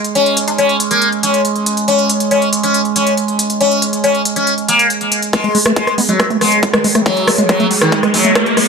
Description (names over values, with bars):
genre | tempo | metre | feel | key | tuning
psychedelic trance | 139 BPM | 4/4 | straight | unclear | A4 = 444 Hz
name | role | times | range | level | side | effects
overtone-sweeping drone | sustained chords | 0.0-8.7 s | G#3 | -19 LUFS | right 5 dB | chorus, built-in reverb, sidechain pumping
big-room dance drum kit | drums | 0.0-8.7 s | hi-hat, rim click | -17 LUFS | equal | none
sitar | melody | 0.2-8.3 s | D#3 to C#4 | -15 LUFS | left 2 dB | phaser, sidechain pumping, digital delay
resonant blip pluck | second line | 0.5-1.1, 6.0-7.9 s | F#3 to D#4 | -28 LUFS | right 1 dB | none
overdriven acid bass | riff | 5.3-8.6 s | G#3 to A3 | -18 LUFS | moving between left 5 dB and right 2 dB | auto-pan, cassette tape, sidechain pumping, digital delay
electronic kick drum | drums | 5.3-8.4 s | none | -20 LUFS | equal | high-pass filter on kick, high-pass filter on room
riser | sound effects | 6.5-8.7 s | none | -20 LUFS | left 1 dB | none
room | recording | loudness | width
moderate plate reverb, RT60 1.7 s | none | -11 LUFS | side -5 dB against mid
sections
0.0-5.3 A section; 5.3-8.7 B section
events
build-up 5.3-8.7; filter sweep on acid bass 5.3-8.7; riser 6.5-8.7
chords
0.0 N.C.; 5.3 D#madd11 (rootless)